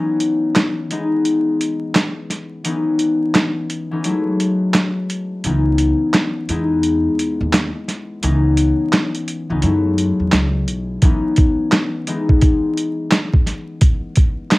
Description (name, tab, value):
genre	hip hop, boom-bap hip-hop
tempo	86 BPM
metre	4/4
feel	swing 63% on 16ths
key	unclear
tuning	A4 = 440 Hz
part	concert harp	accompaniment	0.0-14.6 s	E3 to E4	-19 LUFS	left 2 dB	cassette tape, high-pass filter, low-pass filter
part	boom bap sampler-style drum kit	drums	0.2-14.6 s	handclaps, hi-hat, kick drum, snare drum	-15 LUFS	equal	cassette tape
part	upright bass	bass	5.4-11.0 s	B1 to F#2	-19 LUFS	equal	tube saturation
room	moderate studio reverb, RT60 0.7 s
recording	home recording on cassette, vinyl crackle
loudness	-15 LUFS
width	side -20 dB against mid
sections	0.0-14.6 A section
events	break 0.0-11.0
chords	0.0 C#m9; 0.9 Emaj7; 2.7 C#m9; 4.0 F#m9; 5.4 C#m9; 6.5 Emaj7; 8.2 C#m9; 9.6 F#m9; 11.0 C#m9; 12.1 Emaj7; 13.8 N.C.